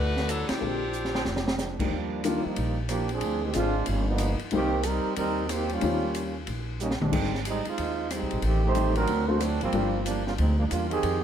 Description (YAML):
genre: jazz, big band swing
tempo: 184 BPM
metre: 4/4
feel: swing 63% on 8ths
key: Eb major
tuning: A4 = 440 Hz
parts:
  - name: edgy saxophone section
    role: melody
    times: 0.0-1.6 s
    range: F3 to B4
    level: -31 LUFS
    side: left 1 dB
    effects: none
  - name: upright bass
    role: bass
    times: 0.0-11.2 s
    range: F1 to F2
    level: -29 LUFS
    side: equal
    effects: none
  - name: open jazz drum kit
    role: drums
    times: 0.2-11.1 s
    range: crash cymbal, hi-hat, kick drum, ride cymbal, rim click, snare drum, toms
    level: -33 LUFS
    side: left 1 dB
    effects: none
  - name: warm baby grand piano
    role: accompaniment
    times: 0.6-9.9 s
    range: D3 to G4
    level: -30 LUFS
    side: left 4 dB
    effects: none
  - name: clear trumpet section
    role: stabs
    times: 1.1-1.2 s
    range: D4 to G5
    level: -39 LUFS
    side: right 1 dB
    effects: none
  - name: clear trombone section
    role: second line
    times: 1.6-11.2 s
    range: D3 to C5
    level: -28 LUFS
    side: right 3 dB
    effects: none
room: light reverb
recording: none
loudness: -25 LUFS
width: side -9 dB against mid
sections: 0.0-1.9 A section; 1.9-11.2 B section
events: band accent 0.5; drum fill 0.9-1.6, 6.8-7.1; trombone section solo 1.9-11.2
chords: 0.0 Gmaj9; 0.6 Bb13; 1.9 Ebmaj9; 3.2 Dm7b5; 3.9 G7alt; 4.5 Cm7; 5.8 Eb13; 7.1 Abmaj7; 8.4 Am7b5; 9.1 D7b13; 9.7 Gm7